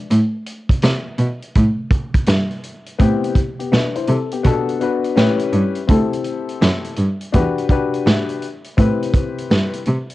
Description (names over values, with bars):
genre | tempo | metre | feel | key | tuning
hip hop, jazz-hop | 83 BPM | 4/4 | swing 65% on 16ths | A dorian | A4 = 439 Hz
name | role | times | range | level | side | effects
dark grand piano | accompaniment | 0.0-9.8 s | B3 to C5 | -21 LUFS | left 6 dB | cassette tape
muted cello | bass | 0.1-10.0 s | D2 to C3 | -18 LUFS | right 1 dB | none
vintage drum kit | drums | 0.1-10.1 s | hi-hat, kick drum, snare drum | -18 LUFS | right 1 dB | vintage 12-bit sampler grit, cassette tape
room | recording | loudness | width
studio reverb | home recording on cassette | -16 LUFS | side -17 dB against mid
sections
0.0-3.0 A section; 3.0-10.1 B section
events
none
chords
0.1 Amadd9; 2.3 N.C.; 3.0 Am9; 4.4 Bm7; 5.2 A9 (rootless); 5.9 D9sus4 (rootless); 7.3 Em7 (rootless); 8.8 Am9 (rootless)